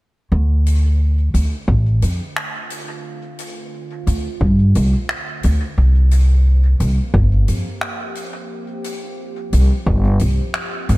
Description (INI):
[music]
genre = ambient dub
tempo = 88 BPM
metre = 4/4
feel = swing 55% on 16ths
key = D minor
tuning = A4 = 440 Hz
[part]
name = warbly tape-like pad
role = sustained chords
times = 1.6-11.0 s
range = D3 to C5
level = -32 LUFS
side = right 1 dB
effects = chorus, built-in reverb
[part]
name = upright bass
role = bass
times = 0.3-11.0 s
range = G1 to G2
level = -14 LUFS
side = equal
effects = none
[part]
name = soft-mallet drum kit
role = drums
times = 0.7-11.0 s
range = finger snaps, hi-hat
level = -28 LUFS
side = equal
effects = studio reverb, dub echo
[part]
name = electronic kick drum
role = drums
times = 1.7-10.0 s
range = none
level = -19 LUFS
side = equal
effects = studio reverb
[sound]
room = little or no reverb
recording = echo-heavy mix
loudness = -14 LUFS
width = side -20 dB against mid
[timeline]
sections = 0.3-11.0 A section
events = fade-in on ambient pad 0.3-11.0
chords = 0.3 Dm7; 5.8 C7sus4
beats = | 0.32 1.00 1.68 2.36 | 3.04 3.73 4.41 5.09 | 5.77 6.45 7.14 7.82 | 8.50 9.18 9.86 10.54